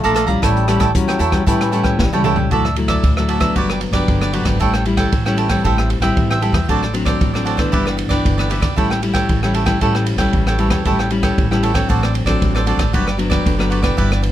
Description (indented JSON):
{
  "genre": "samba and choro",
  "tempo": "115 BPM",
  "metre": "4/4",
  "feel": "straight",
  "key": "unclear",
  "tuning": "A4 = 439 Hz",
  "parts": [
    { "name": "growling trombone", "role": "second line", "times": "0.0-2.5 s", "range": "E3 to A3", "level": "-24 LUFS", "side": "left 5 dB", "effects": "none" },
    { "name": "cavaquinho", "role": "accompaniment", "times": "0.0-14.3 s", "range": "E4 to Bb5", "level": "-21 LUFS", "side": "right 4 dB", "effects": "none" },
    { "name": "nylon-string guitar", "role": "accompaniment", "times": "0.0-14.3 s", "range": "G2 to F4", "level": "-20 LUFS", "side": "left 3 dB", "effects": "none" },
    { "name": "upright bass", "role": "bass", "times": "0.0-14.3 s", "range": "G1 to A2", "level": "-20 LUFS", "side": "equal", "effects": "none" },
    { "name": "open jazz drum kit", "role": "drums", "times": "0.0-14.3 s", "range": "hi-hat, kick drum, ride cymbal, rim click, snare drum, toms", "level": "-20 LUFS", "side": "equal", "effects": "none" }
  ],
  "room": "light reverb",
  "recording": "close, detailed microphones",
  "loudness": "-14 LUFS",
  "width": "side -12 dB against mid",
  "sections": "0.0-2.5 A section; 2.5-14.3 B section",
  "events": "drum fill 2.0-2.5",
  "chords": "0.4 A7; 2.5 Dadd9; 3.6 Gmaj7; 4.6 A7; 5.6 Am7; 6.7 D7/A; 7.7 G6; 8.8 A7; 11.9 D7/A; 12.9 Gmaj7"
}